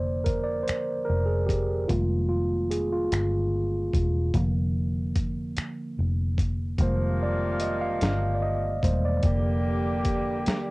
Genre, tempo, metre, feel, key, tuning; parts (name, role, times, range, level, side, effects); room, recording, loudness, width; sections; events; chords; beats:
slow six-eight R&B; 49 BPM (dotted quarters); 6/8; straight; F dorian; A4 = 441 Hz
mellow tine electric piano; accompaniment; 0.0-10.7 s; D3 to F5; -28 LUFS; right 1 dB; cassette tape, plate reverb
vintage muted fingered electric bass; bass; 0.0-10.5 s; E1 to G1; -27 LUFS; equal
dusty soul sampler-style drum kit; drums; 0.3-10.7 s; finger snaps, hi-hat, kick drum, snare drum; -28 LUFS; equal; overdrive, cassette tape
mellow horn section; stabs; 6.8-10.7 s; C3 to G4; -31 LUFS; left 2 dB; cassette tape
light reverb; home recording on cassette; -24 LUFS; side -22 dB against mid
0.0-10.7 A section
tine electric piano solo 0.0-10.7
0.0 Fm69; 1.9 Fm11; 4.3 Bb/F; 6.8 Fm11; 9.2 Gm7/F
0.67 | 1.89 3.12 | 4.34 5.57 | 6.79 8.01 | 9.24 10.46